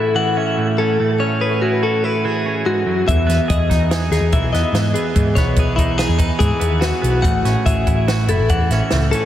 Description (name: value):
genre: math rock and midwest emo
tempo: 144 BPM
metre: 5/4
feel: straight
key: unclear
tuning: A4 = 440 Hz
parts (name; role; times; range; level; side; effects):
- twelve-string electric guitar; accompaniment; 0.0-9.3 s; E2 to G#4; -21 LUFS; right 4 dB; none
- direct-recorded clean electric guitar; arpeggios; 0.0-9.3 s; E4 to F#5; -20 LUFS; left 4 dB; spring reverb, diffuse ambient delay
- hollow-body short-scale picked electric bass; bass; 3.1-9.1 s; F#1 to G#2; -18 LUFS; equal; none
- compact cocktail drum kit; drums; 3.1-9.2 s; hi-hat, kick drum, snare drum; -20 LUFS; equal; none
room: moderate huge ambient reverb, RT60 7.8 s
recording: dreamy mix soaked in reverb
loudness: -15 LUFS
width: side -11 dB against mid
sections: 0.0-9.3 A section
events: none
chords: 0.0 A69; 3.1 Emaj7; 7.2 A6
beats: 0.16 0.57 | 0.99 1.40 1.82 2.24 2.65 | 3.07 3.48 3.90 4.32 4.74 | 5.15 5.57 5.99 6.41 6.82 | 7.24 7.66 8.07 8.49 8.91